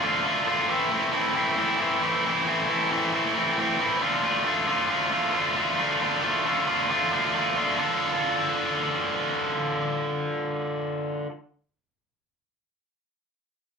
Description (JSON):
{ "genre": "rock", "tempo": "135 BPM", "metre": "4/4", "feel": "straight", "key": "D minor", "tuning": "A4 = 440 Hz", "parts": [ { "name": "biting overdriven guitar", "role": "solo", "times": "0.0-11.3 s", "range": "A2 to A4", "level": "-23 LUFS", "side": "equal", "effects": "none" } ], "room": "wet studio ambience, RT60 0.5 s", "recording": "band playing live in one room", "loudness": "-23 LUFS", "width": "side -5 dB against mid", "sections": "0.7-7.8 A section; 7.8-11.4 B section", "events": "none", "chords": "0.0 Dm; 0.7 Am; 4.0 Dm" }